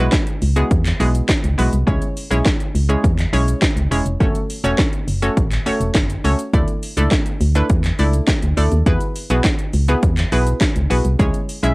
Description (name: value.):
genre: dance-pop.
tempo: 103 BPM.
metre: 4/4.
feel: straight.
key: unclear.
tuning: A4 = 441 Hz.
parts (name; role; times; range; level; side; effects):
hollow square pluck; accompaniment; 0.0-11.7 s; G#3 to E5; -21 LUFS; equal; chorus, sidechain pumping, cassette tape.
organ-like FM bass; bass; 0.0-11.7 s; E1 to E2; -17 LUFS; equal; sidechain pumping.
house drum kit; drums; 0.1-11.7 s; handclaps, hi-hat, kick drum, shaker, snare drum; -18 LUFS; equal; overdrive, cassette tape.
room: little or no reverb.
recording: home recording on cassette.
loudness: -15 LUFS.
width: side -24 dB against mid.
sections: 0.0-11.7 A section.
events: none.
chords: 0.0 Eadd9; 1.9 C#m; 4.2 F#m; 6.5 Dsus2; 8.9 Eadd9; 11.2 C#m.